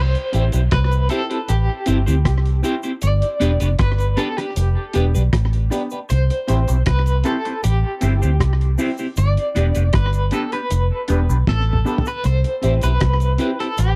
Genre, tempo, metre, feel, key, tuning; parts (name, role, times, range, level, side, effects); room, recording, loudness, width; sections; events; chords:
roots reggae; 78 BPM; 4/4; straight; C major; A4 = 440 Hz
electric guitar at the edge of break-up; melody; 0.0-14.0 s; G4 to D5; -28 LUFS; equal; tremolo, tape echo
vintage muted fingered electric bass; bass; 0.0-14.0 s; E1 to D2; -19 LUFS; equal
cloth-damped thuddy drum kit; drums; 0.1-14.0 s; hi-hat, kick drum, rim click, snare drum, toms; -26 LUFS; equal; slapback echo
clean electric guitar; accompaniment; 0.3-13.7 s; B3 to C5; -28 LUFS; equal; phaser, tape echo
clear upright piano; stabs; 0.3-13.5 s; B3 to G4; -29 LUFS; equal
cabasa; percussion; 0.3-14.0 s; -41 LUFS; equal
little or no reverb; dry, close 1970s-style studio recording; -19 LUFS; mono
0.0-12.2 A section; 12.2-14.0 B section
drum fill 11.5-12.2
0.0 C; 3.0 G; 6.1 C; 9.2 G; 12.2 C